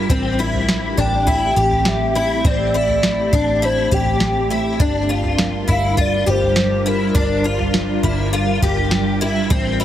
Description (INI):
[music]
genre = dream pop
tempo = 102 BPM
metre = 4/4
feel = straight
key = G dorian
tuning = A4 = 441 Hz
[part]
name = ethereal airy pad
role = sustained chords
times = 0.0-9.8 s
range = G3 to Bb4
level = -23 LUFS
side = equal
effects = ensemble chorus, built-in reverb, tremolo
[part]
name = picked twelve-string acoustic guitar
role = arpeggios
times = 0.0-9.8 s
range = C4 to G4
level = -21 LUFS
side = left 3 dB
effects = ensemble chorus, tape echo
[part]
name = vintage muted fingered electric bass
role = bass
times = 0.0-9.8 s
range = G1 to A1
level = -22 LUFS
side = equal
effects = none
[part]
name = soft vintage rhythm box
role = drums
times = 0.1-9.6 s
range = kick drum, snare drum, toms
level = -20 LUFS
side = right 1 dB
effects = overdrive
[part]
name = hollow clarinet-like synth lead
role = melody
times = 1.0-7.8 s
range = Bb4 to G5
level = -21 LUFS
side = equal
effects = chorus, tape echo
[sound]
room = light reverb, digital ambience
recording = heavily compressed radio sound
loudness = -15 LUFS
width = side -11 dB against mid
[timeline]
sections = 0.0-9.8 A section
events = none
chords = 0.1 Am7; 4.8 Gm7